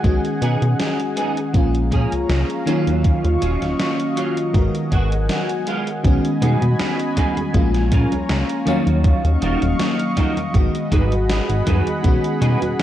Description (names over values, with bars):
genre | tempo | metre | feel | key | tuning
vaporwave | 80 BPM | 4/4 | swing 54% on 16ths | Eb minor | A4 = 440 Hz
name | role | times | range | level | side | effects
FM electric piano with soft pad layer | accompaniment | 0.0-12.8 s | D#3 to F5 | -22 LUFS | left 1 dB | lush chorus, dub echo
lush unison pad | sustained chords | 0.0-12.8 s | Gb3 to Db6 | -27 LUFS | equal | chorus
chorused synth bass | bass | 0.0-12.7 s | Eb1 to B2 | -19 LUFS | equal | tube saturation
electronic kick drum | drums | 0.0-12.2 s | none | -18 LUFS | equal | vintage 12-bit sampler grit, small room ambience
gated 80s digital drum machine | drums | 0.0-12.8 s | congas, hi-hat, snare drum | -27 LUFS | equal | gated reverb, gated reverb snare, vintage 12-bit sampler grit, small room ambience, dub echo
clean electric guitar | riff | 0.4-12.6 s | Gb3 to Db5 | -27 LUFS | right 2 dB | ensemble chorus, dub echo
room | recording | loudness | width
light reverb, digital ambience | echo-heavy mix, cassette tape | -16 LUFS | side -12 dB against mid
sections
0.0-6.0 A section; 6.0-12.8 B section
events
break 5.3-6.0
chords
0.0 B6; 1.5 Bbm7; 2.7 Ebm9; 4.5 Abm7; 6.0 B6; 7.5 Bbm7; 8.7 Ebm9; 10.5 Abm7; 12.0 B6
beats
| 0.04 0.79 1.54 2.29 | 3.04 3.79 4.54 5.29 | 6.04 6.79 7.54 8.29 | 9.04 9.79 10.54 11.29 | 12.04 12.79